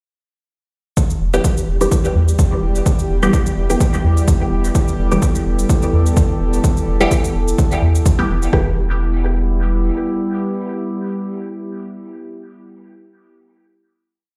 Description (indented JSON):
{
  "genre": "dub techno",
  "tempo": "127 BPM",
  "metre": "4/4",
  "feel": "swing 55% on 16ths",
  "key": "E minor",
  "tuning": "A4 = 441 Hz",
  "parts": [
    { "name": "warbly tape-like pad", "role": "sustained chords", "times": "1.0-12.3 s", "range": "G3 to A4", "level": "-26 LUFS", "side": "equal", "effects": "chorus, built-in reverb, phaser, sidechain pumping" },
    { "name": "electronic kick drum", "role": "drums", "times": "1.0-8.6 s", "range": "none", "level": "-19 LUFS", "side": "equal", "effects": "small room ambience" },
    { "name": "shaker", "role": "drums", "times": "1.0-8.5 s", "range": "none", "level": "-33 LUFS", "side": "equal", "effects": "overdrive, small room ambience" },
    { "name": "bubbling stepped-filter texture", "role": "texture", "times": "1.1-8.5 s", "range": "G3 to G4", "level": "-33 LUFS", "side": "equal", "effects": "chorus, built-in reverb, sidechain pumping" },
    { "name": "soft dub sub bass", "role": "bass", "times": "1.2-9.9 s", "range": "E1 to E2", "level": "-19 LUFS", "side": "equal", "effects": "sidechain pumping" },
    { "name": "filtered dub chord stab", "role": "stabs", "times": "1.3-12.3 s", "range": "E3 to G4", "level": "-23 LUFS", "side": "equal", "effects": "phaser, sidechain pumping, dub echo" }
  ],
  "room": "light reverb, digital ambience",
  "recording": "played on a big sound system in a bare room, stone room reverb",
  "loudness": "-17 LUFS",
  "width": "mono",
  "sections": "1.0-8.5 groove; 8.5-12.3 final chord",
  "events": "none",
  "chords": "1.0 Em"
}